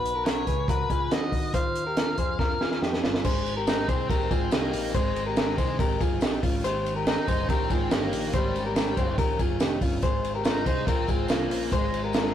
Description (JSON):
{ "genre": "jangly indie pop", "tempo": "142 BPM", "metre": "4/4", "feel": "straight", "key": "Ab major", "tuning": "A4 = 438 Hz", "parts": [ { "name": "octave-fuzz lead guitar", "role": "melody", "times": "0.0-12.3 s", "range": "G3 to F5", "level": "-32 LUFS", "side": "left 1 dB", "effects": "distortion" }, { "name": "direct-recorded clean electric guitar", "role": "arpeggios", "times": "0.0-12.3 s", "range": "Db4 to C5", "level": "-29 LUFS", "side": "left 3 dB", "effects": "none" }, { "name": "picked electric bass", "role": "bass", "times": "0.0-12.3 s", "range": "F1 to F2", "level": "-34 LUFS", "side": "equal", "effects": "none" }, { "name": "compact cocktail drum kit", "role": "drums", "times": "0.1-12.2 s", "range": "crash cymbal, hi-hat, kick drum, ride cymbal, snare drum", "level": "-26 LUFS", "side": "right 1 dB", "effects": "none" }, { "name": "string machine, violas", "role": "sustained chords", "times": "3.2-12.3 s", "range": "Db3 to G5", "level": "-37 LUFS", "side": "equal", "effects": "ensemble chorus" }, { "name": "tambourine", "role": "percussion", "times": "3.2-12.2 s", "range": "none", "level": "-49 LUFS", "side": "right 5 dB", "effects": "none" } ], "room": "light reverb", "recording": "rough rehearsal-room recording, warm saturation", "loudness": "-23 LUFS", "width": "side -10 dB against mid", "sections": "0.0-3.2 A section; 3.2-12.3 B section", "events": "drum fill 2.4-3.2", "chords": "0.0 B; 1.5 Ebsus2; 3.2 Abmaj7; 6.4 Eb7; 10.0 Dbmaj7/Ab", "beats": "0.26 0.69 1.11 | 1.54 1.97 2.39 2.82 | 3.25 3.67 4.10 4.52 | 4.95 5.37 5.79 6.22 | 6.64 7.07 7.49 7.91 | 8.34 8.76 9.18 9.60 | 10.03 10.45 10.87 11.29 | 11.72 12.14" }